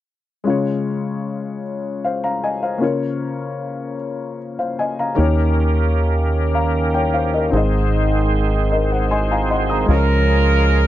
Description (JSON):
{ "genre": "gospel", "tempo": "51 BPM (dotted quarters)", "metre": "6/8", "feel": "straight", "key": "Db major", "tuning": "A4 = 440 Hz", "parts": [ { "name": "warm upright piano", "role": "accompaniment", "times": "0.4-10.9 s", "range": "Ab2 to Eb6", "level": "-20 LUFS", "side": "left 4 dB", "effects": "none" }, { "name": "bright tonewheel organ", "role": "sustained chords", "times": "5.2-10.9 s", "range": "Eb3 to C5", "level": "-22 LUFS", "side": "right 2 dB", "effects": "fast rotary speaker, overdrive, chorus vibrato" }, { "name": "deep dub fingered electric bass", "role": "bass", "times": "5.2-10.9 s", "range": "Ab1 to Eb2", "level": "-18 LUFS", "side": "right 1 dB", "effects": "none" }, { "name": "clear horn section", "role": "melody", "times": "9.9-10.9 s", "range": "Db4 to Bb4", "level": "-18 LUFS", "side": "right 4 dB", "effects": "none" } ], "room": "light reverb", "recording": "dry, close 1970s-style studio recording", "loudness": "-17 LUFS", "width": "side -13 dB against mid", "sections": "0.5-9.9 A section", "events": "upright piano fill 8.7-9.9", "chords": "0.5 Db; 5.2 Eb7; 7.5 Ab; 9.9 Db" }